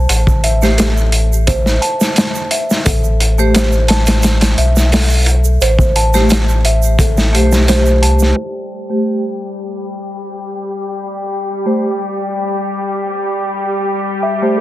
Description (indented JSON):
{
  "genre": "trip hop",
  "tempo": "87 BPM",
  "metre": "4/4",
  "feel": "straight",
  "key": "A minor",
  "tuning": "A4 = 440 Hz",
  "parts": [
    { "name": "music box", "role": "arpeggios", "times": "0.0-8.4, 14.2-14.6 s", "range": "A4 to A5", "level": "-20 LUFS", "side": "equal", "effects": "tape echo" },
    { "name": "warm sub bass", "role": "bass", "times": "0.0-8.3 s", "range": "A1 to C2", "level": "-13 LUFS", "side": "equal", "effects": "tube saturation" },
    { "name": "crunchy breakbeat drum kit", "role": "drums", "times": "0.1-8.4 s", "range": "hi-hat, kick drum, snare drum", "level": "-15 LUFS", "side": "equal", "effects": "none" },
    { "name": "egg shaker", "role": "percussion", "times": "0.1-8.3 s", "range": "none", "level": "-28 LUFS", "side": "right 9 dB", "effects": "none" },
    { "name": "vibraphone with medium mallets", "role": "accompaniment", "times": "0.6-14.6 s", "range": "A3 to C5", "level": "-18 LUFS", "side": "equal", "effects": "harmonic tremolo, tape echo" },
    { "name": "warm studio violin section", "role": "sustained chords", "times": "8.4-14.6 s", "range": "G3 to G4", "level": "-19 LUFS", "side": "left 1 dB", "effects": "low-pass filter" }
  ],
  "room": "light reverb, small room reverb",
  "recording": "dense, heavily limited modern master, low-pass filter",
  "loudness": "-12 LUFS",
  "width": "side -15 dB against mid",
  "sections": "0.0-8.4 A section; 8.4-14.6 B section",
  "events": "filter sweep on vibraphone 0.0-8.4; filter sweep on violin section 8.4-14.6",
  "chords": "0.0 Am7; 8.4 N.C."
}